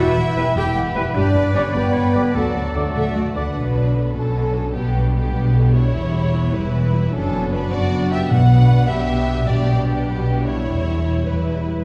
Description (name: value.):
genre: cinematic, heroic adventure film score.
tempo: 101 BPM (dotted quarters).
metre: 6/8.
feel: straight.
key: D major, B minor from 3.6 s.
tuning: A4 = 437 Hz.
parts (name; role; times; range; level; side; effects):
warm symphonic violin section; melody; 0.0-11.8 s; A3 to G5; -31 LUFS; equal; none.
bright oboe; second line; 0.0-3.4 s; G4 to D5; -33 LUFS; equal; none.
mellow hollow flute section; second line; 0.0-3.3 s; D5 to G5; -33 LUFS; equal; none.
warm symphonic violin section; second line; 0.0-11.8 s; F#4 to B5; -30 LUFS; equal; none.
rich studio viola section; accompaniment; 0.0-11.8 s; D3 to D5; -30 LUFS; equal; none.
mellow French horn section; sustained chords; 0.0-11.8 s; D3 to G4; -28 LUFS; equal; none.
dark symphonic double bass section; bass; 0.0-11.8 s; E1 to D2; -24 LUFS; equal; none.
warm symphonic cello section; bass; 0.0-11.8 s; D2 to B2; -24 LUFS; equal; none.
warm trombone section; sustained chords; 0.4-3.4 s; D3 to A3; -34 LUFS; equal; none.
mellow trumpet; stabs; 0.4-3.4 s; B4 to D5; -31 LUFS; equal; none.
timpani; percussion; 8.3-10.0 s; B2; -24 LUFS; equal; none.
room: wet concert hall reverb, RT60 1.8 s.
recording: heard from further back in the room.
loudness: -19 LUFS.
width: mono.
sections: 0.0-3.6 A section; 3.6-11.8 B section.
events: none.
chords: 0.0 Em; 1.2 G; 2.3 D; 3.6 Bm; 4.8 G/B; 5.9 Em; 7.1 Bm/F#; 8.3 Bm; 9.5 G/B; 10.7 Em.